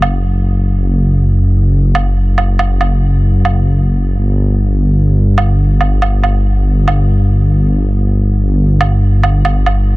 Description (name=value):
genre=deep dubstep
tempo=140 BPM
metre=4/4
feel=swing 55% on 16ths, half-time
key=unclear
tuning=A4 = 440 Hz
part: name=dark detuned saw bass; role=bass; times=0.0-10.0 s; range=F#1 to G1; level=-10 LUFS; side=equal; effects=tube saturation
part: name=woodblock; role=drums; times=0.0-9.7 s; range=none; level=-20 LUFS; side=right 4 dB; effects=none
room=little or no reverb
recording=none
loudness=-10 LUFS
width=side -20 dB against mid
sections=0.0-10.0 A section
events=none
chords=none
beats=0.33 | 0.76 1.19 1.62 2.05 | 2.48 2.90 3.33 3.76 | 4.19 4.62 5.05 5.47 | 5.90 6.33 6.76 7.19 | 7.62 8.05 8.47 8.90 | 9.33 9.76